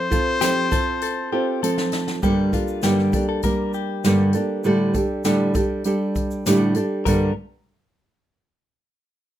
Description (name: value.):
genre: acoustic pop.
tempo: 99 BPM.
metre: 4/4.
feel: straight.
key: G minor.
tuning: A4 = 441 Hz.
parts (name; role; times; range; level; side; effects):
clear trumpet; melody; 0.0-1.9 s; C5; -24 LUFS; left 4 dB; none.
nylon-string guitar; accompaniment; 0.0-7.3 s; G2 to A4; -20 LUFS; right 2 dB; none.
jazz brush drum kit; drums; 0.1-7.2 s; kick drum, shaker, snare drum; -27 LUFS; equal; none.
tambourine; percussion; 0.1-7.3 s; none; -34 LUFS; left 8 dB; none.
direct-recorded clean electric guitar; second line; 0.4-7.3 s; F4 to Bb4; -28 LUFS; left 10 dB; none.
room: moderate studio reverb, RT60 0.6 s.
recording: minimal, uncompressed stereo recording.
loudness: -18 LUFS.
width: side -12 dB against mid.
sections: 0.0-2.2 A section; 2.2-7.1 B section; 7.1-9.4 C section.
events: drum fill 1.0-2.2.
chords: 0.0 F; 2.2 Gmadd9; 4.6 Dsus4/A; 7.1 Gmadd9.